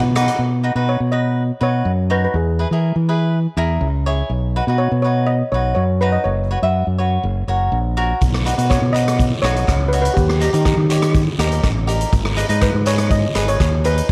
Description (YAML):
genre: calypso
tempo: 123 BPM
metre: 4/4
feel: straight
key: B major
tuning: A4 = 439 Hz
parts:
  - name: modern bright fingered electric bass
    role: bass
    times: 0.0-14.1 s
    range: F#1 to E3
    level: -20 LUFS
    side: equal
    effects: none
  - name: cavaquinho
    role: accompaniment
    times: 0.2-14.1 s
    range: D#4 to E5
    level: -25 LUFS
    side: equal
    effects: none
  - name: swinging big-band drum kit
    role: drums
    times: 0.2-0.4, 8.2-14.1 s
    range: hi-hat, kick drum, rim click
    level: -22 LUFS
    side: equal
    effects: none
  - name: steel pan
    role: melody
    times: 0.9-14.1 s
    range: G4 to D#5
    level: -24 LUFS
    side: equal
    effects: none
  - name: guiro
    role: percussion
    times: 8.2-14.1 s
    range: none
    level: -35 LUFS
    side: equal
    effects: none
room: light reverb, studio reverb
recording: none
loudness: -18 LUFS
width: mono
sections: 0.4-14.1 A section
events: none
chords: 0.4 B; 2.4 E; 4.3 B; 6.3 F#sus4; 7.2 F#; 8.2 B; 10.2 D#7; 12.1 G#m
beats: | 0.40 0.89 1.38 1.86 | 2.35 2.84 3.33 3.82 | 4.31 4.80 5.28 5.77 | 6.26 6.75 7.24 7.73 | 8.21 8.70 9.19 9.68 | 10.17 10.66 11.15 11.64 | 12.13 12.62 13.11 13.60 | 14.09